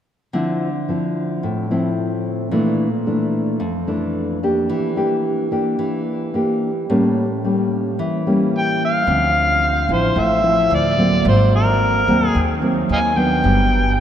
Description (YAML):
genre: bossa nova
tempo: 110 BPM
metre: 4/4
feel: straight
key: D minor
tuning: A4 = 440 Hz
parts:
  - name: nylon-string guitar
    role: accompaniment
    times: 0.3-14.0 s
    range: F2 to G4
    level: -18 LUFS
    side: equal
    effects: none
  - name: overdriven harmonica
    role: melody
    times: 8.6-14.0 s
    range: A#4 to G#5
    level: -17 LUFS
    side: equal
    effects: none
  - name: upright bass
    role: bass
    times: 9.1-14.0 s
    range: G1 to D#2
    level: -20 LUFS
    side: equal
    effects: none
room: wet cathedral reverb, RT60 5.7 s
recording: in a vast, echoing space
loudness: -16 LUFS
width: side -9 dB against mid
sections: 0.3-9.1 A section; 9.1-14.0 B section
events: none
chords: 0.3 Dm9; 2.5 Bbmaj7#11; 4.7 Em7b5; 6.9 A7b9; 9.1 Dm9; 11.3 G#9; 13.4 Gmaj7